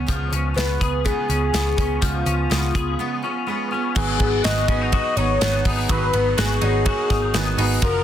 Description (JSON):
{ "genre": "jangly indie pop", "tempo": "124 BPM", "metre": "4/4", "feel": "straight", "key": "unclear", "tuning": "A4 = 440 Hz", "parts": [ { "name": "picked steel-string acoustic guitar", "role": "accompaniment", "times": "0.0-8.0 s", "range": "G#2 to A#4", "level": "-28 LUFS", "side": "right 8 dB", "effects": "none" }, { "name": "clean electric guitar", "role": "arpeggios", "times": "0.0-8.0 s", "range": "E#3 to G#4", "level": "-26 LUFS", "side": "left 6 dB", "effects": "ensemble chorus, plate reverb" }, { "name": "vintage muted picked electric bass", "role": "bass", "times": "0.0-8.0 s", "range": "F#1 to C#2", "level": "-23 LUFS", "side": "equal", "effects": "none" }, { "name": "modern studio drum kit", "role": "drums", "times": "0.1-7.9 s", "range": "crash cymbal, hi-hat, kick drum, ride cymbal, snare drum", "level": "-24 LUFS", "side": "equal", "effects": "none" }, { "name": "warm velvety synth lead", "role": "melody", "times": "0.6-8.0 s", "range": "E#4 to D#5", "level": "-24 LUFS", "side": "left 2 dB", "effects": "chorus, plate reverb" }, { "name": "warm upright piano", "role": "accompaniment", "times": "4.0-8.0 s", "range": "E#4 to C#5", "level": "-30 LUFS", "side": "right 3 dB", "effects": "plate reverb" } ], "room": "light reverb", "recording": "dense, heavily limited modern master", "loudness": "-18 LUFS", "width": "side -10 dB against mid", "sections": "0.0-4.0 A section; 4.0-8.0 B section", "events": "break 3.0-4.0", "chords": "0.0 C#7; 4.0 G#m7" }